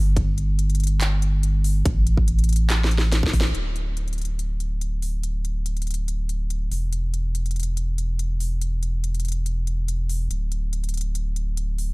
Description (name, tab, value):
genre	future bass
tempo	142 BPM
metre	4/4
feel	half-time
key	unclear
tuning	A4 = 441 Hz
part	saturated sub bass	bass	0.0-11.9 s	D1 to A1	-22 LUFS	equal	sidechain pumping
part	electronic kick drum	drums	0.2-3.4 s	none	-22 LUFS	equal	studio ambience
part	trap drum kit	drums	0.2-11.9 s	handclaps, hi-hat, ride cymbal, snare drum	-30 LUFS	left 1 dB	studio ambience
room	little or no reverb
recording	none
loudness	-21 LUFS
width	side -25 dB against mid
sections	0.0-3.5 A section; 3.5-11.9 B section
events	drop 0.0-3.5; drum fill 2.7-3.5; band accent 3.4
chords	none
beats	| 0.17 0.59 1.01 1.43 | 1.86 2.28 2.70 3.12 | 3.55 3.97 4.39 4.81 | 5.24 5.66 6.08 6.50 | 6.93 7.35 7.77 8.19 | 8.62 9.04 9.46 9.88 | 10.31 10.73 11.15 11.57